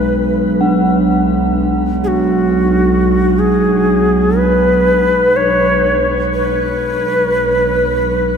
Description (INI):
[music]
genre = world meditative, free-time meditation music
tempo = free time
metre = none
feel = none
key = B kumoi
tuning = A4 = 440 Hz
[part]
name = Native American-style cedar flute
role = melody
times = 0.0-8.4 s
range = F#4 to C#5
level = -14 LUFS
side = left 1 dB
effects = shimmer reverb, ping-pong delay
[part]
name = warbly tape-like pad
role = drone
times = 0.0-8.4 s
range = B1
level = -15 LUFS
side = right 1 dB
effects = chorus, built-in reverb
[part]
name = bronze singing bowl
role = texture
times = 0.0-8.4 s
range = G#3 to D4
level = -20 LUFS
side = equal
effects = shimmer reverb
[sound]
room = wet cathedral reverb, RT60 6.3 s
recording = dreamy mix soaked in reverb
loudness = -11 LUFS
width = side -6 dB against mid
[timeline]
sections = 0.0-8.4 A section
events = none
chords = none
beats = free time